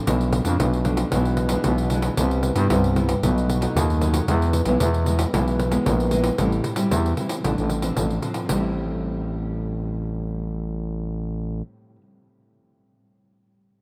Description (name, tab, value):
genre	samba and choro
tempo	114 BPM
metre	4/4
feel	straight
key	A minor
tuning	A4 = 440 Hz
part	nylon-string guitar	accompaniment	0.0-12.1 s	F#2 to E4	-28 LUFS	equal	none
part	growling FM bass	bass	0.1-11.6 s	A1 to G2	-25 LUFS	equal	none
part	pandeiro	percussion	0.1-8.6 s	none	-29 LUFS	equal	none
room	moderate cathedral reverb, RT60 5.6 s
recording	in a vast, echoing space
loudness	-23 LUFS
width	mono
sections	0.0-6.4 A section; 6.4-8.5 B section; 8.5-12.7 C section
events	none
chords	0.1 Bm7b5; 1.1 E7/B; 2.2 Cmaj7; 3.2 B7; 4.3 E; 6.4 Am7; 7.4 Dm7/A; 8.5 Am7